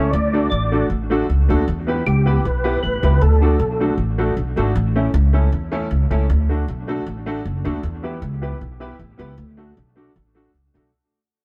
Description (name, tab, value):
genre	ska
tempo	156 BPM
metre	4/4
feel	straight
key	D major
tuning	A4 = 440 Hz
part	percussive tonewheel organ	melody	0.0-3.9 s	G4 to D5	-25 LUFS	equal	chorus vibrato, slow rotary speaker
part	hollow-body jazz guitar	accompaniment	0.0-10.9 s	A3 to G4	-29 LUFS	equal	analog delay
part	warm upright piano	stabs	0.0-10.9 s	A3 to B4	-28 LUFS	equal	none
part	upright bass	bass	0.0-10.9 s	F#1 to E2	-21 LUFS	equal	none
room	moderate studio reverb, RT60 0.7 s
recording	band playing live in one room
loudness	-19 LUFS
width	mono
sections	0.0-4.8 A section; 4.8-10.9 B section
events	fade-out 4.8-10.9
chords	0.1 D; 1.7 Em; 3.2 D; 4.8 A; 6.3 D; 7.8 Em; 9.4 D